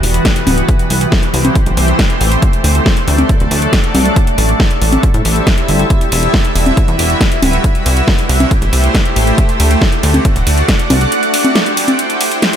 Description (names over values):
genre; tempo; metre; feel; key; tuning
uplifting trance; 138 BPM; 4/4; straight; unclear; A4 = 440 Hz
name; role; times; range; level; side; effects
shimmering ambient pad; sustained chords; 0.0-12.6 s; E3 to G5; -15 LUFS; equal; chorus, built-in reverb, sidechain pumping
plucky analog bass; bass; 0.0-11.1 s; D1 to A2; -13 LUFS; equal; sidechain pumping
big-room dance drum kit; drums; 0.0-12.6 s; congas, hi-hat, ride cymbal, snare drum; -16 LUFS; equal; sidechain pumping on hats, sidechain pumping on cymbals, sidechain pumping on perc
sub drop; sound effects; 0.0-0.7 s; none; barely audible; none; none
electronic kick drum; drums; 0.3-10.8 s; none; -13 LUFS; equal; none
room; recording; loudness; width
little or no reverb; none; -10 LUFS; side -9 dB against mid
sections
0.0-12.6 A section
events
impact 0.0-0.7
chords
0.0 Emadd9; 0.7 C6; 2.4 D; 4.2 Am7; 5.9 Emadd9; 7.6 C6; 9.4 D; 11.1 Am7